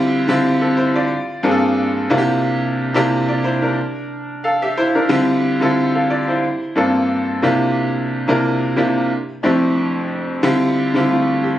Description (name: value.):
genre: R&B.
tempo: 90 BPM.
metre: 4/4.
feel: swing 54% on 16ths.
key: unclear.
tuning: A4 = 440 Hz.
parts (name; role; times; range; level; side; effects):
bright concert grand piano; solo; 0.0-11.6 s; F2 to F5; -15 LUFS; equal; none.
room: light reverb.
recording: recorded on a phone in the room, studio reverb.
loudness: -15 LUFS.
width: side -12 dB against mid.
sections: 0.0-5.1 A section; 5.1-11.6 B section.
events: none.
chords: 0.0 Dm11; 1.1 Gm9; 2.1 C9sus4; 3.8 N.C.; 5.1 Dm11; 6.4 Gm9; 7.4 C9sus4; 9.1 F69; 10.4 Dm11.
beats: 0.42 1.09 1.76 | 2.42 3.09 3.76 4.42 | 5.09 5.76 6.42 7.09 | 7.76 8.42 9.09 9.76 | 10.42 11.09.